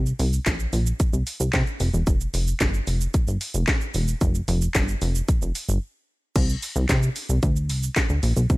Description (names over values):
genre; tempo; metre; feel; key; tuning
dance-pop; 112 BPM; 4/4; straight; unclear; A4 = 440 Hz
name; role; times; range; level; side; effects
plucky analog bass; bass; 0.0-8.6 s; E1 to C3; -22 LUFS; equal; sidechain pumping
house drum kit; drums; 0.1-8.6 s; crash cymbal, handclaps, hi-hat, kick drum, shaker, snare drum; -23 LUFS; equal; none
room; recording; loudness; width
little or no reverb; none; -21 LUFS; side -21 dB against mid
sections
0.0-6.4 A section; 6.4-8.6 B section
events
break 5.8-6.4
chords
none